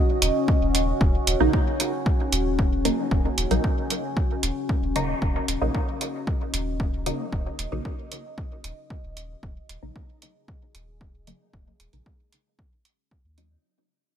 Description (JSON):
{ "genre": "dub techno", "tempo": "114 BPM", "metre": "4/4", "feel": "straight", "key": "Eb minor", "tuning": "A4 = 439 Hz", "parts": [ { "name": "deep dark ambient pad", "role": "sustained chords", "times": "0.0-13.6 s", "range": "Db4 to Ab5", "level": "-29 LUFS", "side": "left 1 dB", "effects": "chorus, built-in reverb, sidechain pumping" }, { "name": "soft dub sub bass", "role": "bass", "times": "0.2-13.6 s", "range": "Eb1 to Eb2", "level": "-28 LUFS", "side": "equal", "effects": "tube saturation, sidechain pumping" }, { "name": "electronic hi-hat", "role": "drums", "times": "0.2-13.5 s", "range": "none", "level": "-26 LUFS", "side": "right 4 dB", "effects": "none" }, { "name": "electronic kick drum", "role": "drums", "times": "0.5-13.2 s", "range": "none", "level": "-24 LUFS", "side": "equal", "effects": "none" }, { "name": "filtered dub chord stab", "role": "stabs", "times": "1.4-13.6 s", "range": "Db3 to Eb4", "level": "-28 LUFS", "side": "right 1 dB", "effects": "phaser, sidechain pumping, dub echo" } ], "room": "light reverb", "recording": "bright 1980s-style digital production", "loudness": "-22 LUFS", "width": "side -9 dB against mid", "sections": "0.0-13.6 A section", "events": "fade-out 0.0-13.6; filter sweep on synth stab 0.0-13.6", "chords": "0.0 Ebm7", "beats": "0.48 | 1.01 1.53 2.06 2.59 | 3.11 3.64 4.17 4.69 | 5.22 5.75 6.27 6.80 | 7.33 7.85 8.38 8.90 | 9.43 9.96 10.48 11.01 | 11.54 12.06 12.59 13.11" }